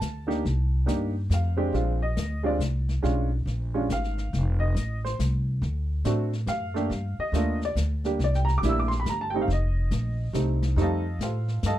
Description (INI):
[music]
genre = jazz, small-group swing and bop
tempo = 139 BPM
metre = 3/4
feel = swing 65% on 8ths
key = F mixolydian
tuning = A4 = 440 Hz
[part]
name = warm upright piano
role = accompaniment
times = 0.0-11.8 s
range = G3 to E6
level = -28 LUFS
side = right 2 dB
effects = none
[part]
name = upright bass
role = bass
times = 0.0-11.8 s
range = F1 to A2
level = -26 LUFS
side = equal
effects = none
[part]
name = jazz brush drum kit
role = drums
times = 0.0-11.8 s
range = brushed snare drum, hi-hat, snare drum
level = -37 LUFS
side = left 4 dB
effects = none
[sound]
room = light reverb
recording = dark, warm production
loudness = -24 LUFS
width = side -13 dB against mid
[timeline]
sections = 0.0-11.8 A section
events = none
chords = 0.4 Cm7; 1.3 Fsus2; 1.7 Bb9; 3.0 Bdim7; 4.3 F7; 5.6 D7; 6.9 Gm7; 8.2 C9; 9.5 F9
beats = 0.02 | 0.45 0.88 1.31 | 1.74 2.17 2.60 | 3.03 3.46 3.89 | 4.32 4.75 5.18 | 5.61 6.04 6.47 | 6.91 7.34 7.77 | 8.20 8.63 9.06 | 9.49 9.91 10.35 | 10.77 11.20 11.63